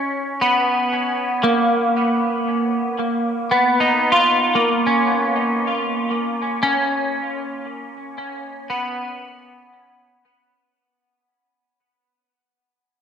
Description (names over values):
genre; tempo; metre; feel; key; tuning
ambient; 58 BPM; 3/4; straight; B lydian; A4 = 440 Hz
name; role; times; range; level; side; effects
clean electric guitar; solo; 0.0-11.2 s; A#3 to E#4; -17 LUFS; equal; analog chorus, tape echo
room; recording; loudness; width
wet spring reverb, RT60 2.5 s; echo-heavy mix, cassette tape, nothing above 10.8 kHz; -17 LUFS; side -7 dB against mid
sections
0.0-10.7 A section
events
fade-out 6.6-10.7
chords
0.0 Bmaj7